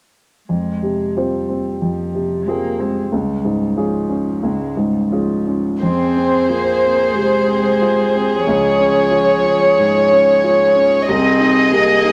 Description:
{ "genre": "neoclassical piano and strings", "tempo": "91 BPM", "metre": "4/4", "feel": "rubato", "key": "F minor", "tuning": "A4 = 442 Hz", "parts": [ { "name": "dark cello", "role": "second line", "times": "0.5-12.1 s", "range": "F3 to C4", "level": "-24 LUFS", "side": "equal", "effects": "none" }, { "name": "warm grand piano", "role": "accompaniment", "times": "0.5-12.1 s", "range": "C2 to C5", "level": "-21 LUFS", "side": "equal", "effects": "none" }, { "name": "warm chamber violin section", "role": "melody", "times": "5.8-12.1 s", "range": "C5 to Eb5", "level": "-16 LUFS", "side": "equal", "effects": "none" }, { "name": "warm viola", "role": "accompaniment", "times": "5.8-12.1 s", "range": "Ab4", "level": "-23 LUFS", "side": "equal", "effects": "none" } ], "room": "wet studio reverb, RT60 0.6 s", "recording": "none", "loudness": "-16 LUFS", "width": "mono", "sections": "0.5-5.8 A section; 5.8-12.1 B section", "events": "none", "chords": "0.5 Fm; 3.1 Db; 5.8 Fm; 8.5 Db; 11.1 Ab/C", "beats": "| 0.49 1.17 1.83 2.48 | 3.12 3.77 4.43 5.11 | 5.82 6.48 7.14 7.80 | 8.46 9.12 9.77 10.43 | 11.08 11.72" }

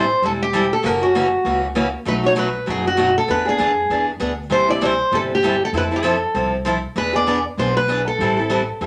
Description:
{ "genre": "acoustic string swing (jazz manouche)", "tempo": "196 BPM", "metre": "4/4", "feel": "swing 58% on 8ths", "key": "unclear", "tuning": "A4 = 439 Hz", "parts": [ { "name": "picked steel-string acoustic guitar", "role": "melody", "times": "0.0-8.9 s", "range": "F#4 to D5", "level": "-21 LUFS", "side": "equal", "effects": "none" }, { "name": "picked steel-string acoustic guitar", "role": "accompaniment", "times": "0.0-8.9 s", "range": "B2 to A4", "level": "-23 LUFS", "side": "equal", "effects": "none" }, { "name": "upright bass", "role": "bass", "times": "0.0-8.9 s", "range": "E1 to F2", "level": "-30 LUFS", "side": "equal", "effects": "none" } ], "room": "wet studio reverb, RT60 0.6 s", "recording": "none", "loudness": "-19 LUFS", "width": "mono", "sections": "0.0-8.9 A section", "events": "none", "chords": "0.0 Am7; 0.8 F#7; 2.1 B7; 3.3 E7; 4.5 C6; 5.7 Fmaj7; 7.0 E7; 8.2 Am7", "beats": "0.23 0.54 | 0.84 1.15 1.46 1.76 | 2.07 2.37 2.68 2.98 | 3.29 3.60 3.90 4.21 | 4.51 4.82 5.13 5.43 | 5.74 6.05 6.35 6.66 | 6.97 7.28 7.58 7.89 | 8.20 8.50 8.81" }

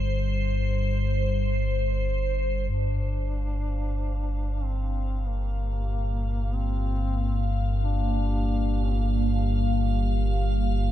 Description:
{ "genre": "dark ambient drone", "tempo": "free time", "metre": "none", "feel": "none", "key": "unclear", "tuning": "A4 = 440 Hz", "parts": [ { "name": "deep rumbling drone", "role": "drone", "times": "0.0-10.9 s", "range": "G1 to G2", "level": "-25 LUFS", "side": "equal", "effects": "built-in reverb" }, { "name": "icy glass pad", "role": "texture", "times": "0.0-10.9 s", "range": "C5 to F5", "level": "-34 LUFS", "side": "equal", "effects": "chorus, built-in reverb" }, { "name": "mellow duduk", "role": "melody", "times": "2.7-9.1 s", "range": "Bb3 to D4", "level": "-37 LUFS", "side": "left 2 dB", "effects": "diffuse ambient delay" }, { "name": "dark analog pad", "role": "sustained chords", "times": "2.7-10.9 s", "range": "Bb3 to F5", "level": "-32 LUFS", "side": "equal", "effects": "chorus, phaser" } ], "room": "light reverb", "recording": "none", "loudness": "-24 LUFS", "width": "side -12 dB against mid", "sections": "0.0-2.7 A section; 2.7-10.9 B section", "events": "fade-in on analog synth pad 2.7-10.9; fade-in on ambient pad 2.7-10.9; fade-in on duduk 2.7-10.9", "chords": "0.0 Gsus4; 2.7 Gm7", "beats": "free time" }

